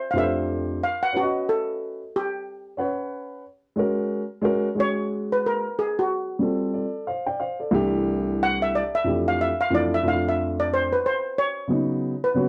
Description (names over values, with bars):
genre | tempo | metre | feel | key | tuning
hip hop | 91 BPM | 4/4 | swing 59% on 16ths | unclear | A4 = 444 Hz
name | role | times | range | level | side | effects
steel pan | melody | 0.0-12.5 s | F#4 to F#5 | -26 LUFS | equal | none
dark baby grand piano | accompaniment | 0.1-12.5 s | C2 to G5 | -26 LUFS | equal | none
room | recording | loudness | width
light reverb | dry, close 1970s-style studio recording | -24 LUFS | mono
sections
0.0-3.8 A section; 3.8-12.5 B section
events
steel pan solo 3.8-12.5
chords
0.0 Fmaj9; 1.1 D#7alt; 3.8 G#9sus4; 6.4 Gsus2; 7.7 Cadd9; 9.1 Fmaj7; 11.7 C#9sus4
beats
0.49 | 1.15 1.80 2.46 3.12 | 3.78 4.44 5.10 5.76 | 6.42 7.08 7.74 8.40 | 9.06 9.72 10.38 11.04 | 11.69 12.35